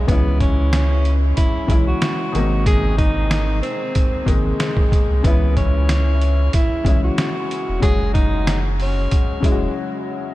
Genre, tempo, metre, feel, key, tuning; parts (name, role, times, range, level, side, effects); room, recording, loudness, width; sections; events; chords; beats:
hip hop, boom-bap hip-hop; 93 BPM; 4/4; swing 55% on 16ths; C# dorian; A4 = 440 Hz
breathy tenor saxophone; melody; 0.0-9.7 s; G#3 to G#4; -24 LUFS; equal; high-pass filter, low-pass filter, analog delay
clear upright piano; accompaniment; 0.0-10.3 s; B2 to F#4; -24 LUFS; left 3 dB; cassette tape, high-pass filter, low-pass filter
saturated sub bass; bass; 0.0-9.7 s; E1 to C#2; -18 LUFS; equal
trip hop sampler-style drum kit; drums; 0.1-9.6 s; hi-hat, kick drum, snare drum; -19 LUFS; equal
light reverb; -16 LUFS; side -17 dB against mid
0.0-10.3 A section
break 9.8-10.3
0.1 C#m; 2.3 G#add9; 5.2 C#m; 7.8 F#sus2
| 0.08 0.73 1.37 2.02 | 2.66 3.31 3.95 4.60 | 5.24 5.89 6.53 7.18 | 7.82 8.47 9.11 9.76